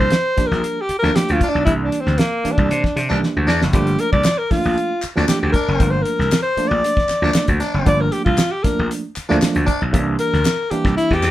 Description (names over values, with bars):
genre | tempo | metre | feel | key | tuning
funk | 116 BPM | 4/4 | straight | G dorian | A4 = 439 Hz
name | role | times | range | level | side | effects
breathy alto saxophone | melody | 0.0-11.3 s | Bb3 to D5 | -20 LUFS | left 1 dB | none
barky reed electric piano | stabs | 0.0-11.1 s | E3 to D4 | -23 LUFS | right 3 dB | overdrive, fast tremolo
gritty slap bass | bass | 0.0-11.3 s | F#1 to C3 | -20 LUFS | equal | overdrive
cloth-damped thuddy drum kit | drums | 0.1-11.3 s | hi-hat, kick drum, snare drum | -20 LUFS | equal | none
raspy baritone saxophone | second line | 1.0-9.8 s | D4 | -24 LUFS | left 1 dB | none
group handclap | percussion | 4.3-11.3 s | none | -30 LUFS | left 3 dB | none
room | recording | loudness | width
light reverb | band playing live in one room | -15 LUFS | side -14 dB against mid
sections
0.0-11.3 A section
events
alto saxophone solo 0.0-11.3; drum fill 3.2-3.7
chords
0.0 Gm9; 1.7 C9; 3.7 Gm9 (rootless); 9.9 C9